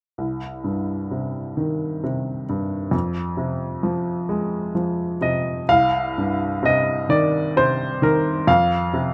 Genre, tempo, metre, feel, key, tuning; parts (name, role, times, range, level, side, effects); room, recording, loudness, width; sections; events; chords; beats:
classical, lyrical solo piano; 43 BPM (dotted quarters); 6/8; rubato; C minor; A4 = 440 Hz
bright baby grand piano; solo; 0.2-9.1 s; C2 to F5; -22 LUFS; equal
light reverb; close, detailed microphones; -22 LUFS; mono
0.2-5.7 A section; 5.7-9.1 B section
0.2 Cm; 2.9 Fm; 5.7 Cm; 8.5 F5
| 0.19 1.58 | 2.93 4.29 | 5.68 7.09 | 8.48